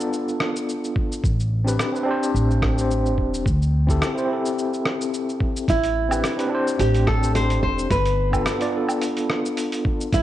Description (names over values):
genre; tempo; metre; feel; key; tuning
sunset chillout; 108 BPM; 4/4; swing 54% on 16ths; unclear; A4 = 440 Hz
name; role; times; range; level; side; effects
overdriven tine electric piano; accompaniment; 0.0-10.1 s; B3 to D5; -24 LUFS; left 1 dB; fast tremolo, auto-pan, tape echo
dusty soul sampler-style drum kit; drums; 0.0-10.2 s; hi-hat, rim click, shaker, woodblock; -28 LUFS; equal; overdrive, studio reverb
electronic kick drum; drums; 1.0-10.2 s; none; -24 LUFS; equal; overdrive, studio reverb
upright bass; bass; 1.2-10.2 s; E1 to D2; -22 LUFS; equal; none
nylon-string guitar; melody; 5.7-10.2 s; E4 to C5; -24 LUFS; right 1 dB; vintage 12-bit sampler grit, tape echo
room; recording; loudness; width
light reverb, digital ambience; worn, warbling old tape, cassette tape, warbly pitch drift; -19 LUFS; side -13 dB against mid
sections
0.0-10.2 A section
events
none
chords
0.0 G9 (rootless); 1.2 Am11; 3.5 D9sus4; 5.7 Am11; 7.9 G9